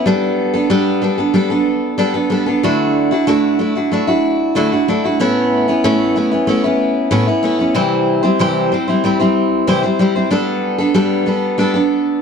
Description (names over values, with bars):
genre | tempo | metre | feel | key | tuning
rock | 94 BPM | 4/4 | straight | unclear | A4 = 437 Hz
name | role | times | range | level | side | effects
picked steel-string acoustic guitar | solo | 0.0-12.2 s | A2 to C5 | -13 LUFS | equal | none
room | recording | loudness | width
moderate echo chamber reverb, RT60 2.1 s | dark, warm production | -13 LUFS | side -6 dB against mid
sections
0.1-12.2 A section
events
none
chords
0.1 Gadd9; 2.6 Dadd9; 5.2 Aadd9; 7.8 C; 10.3 Gadd9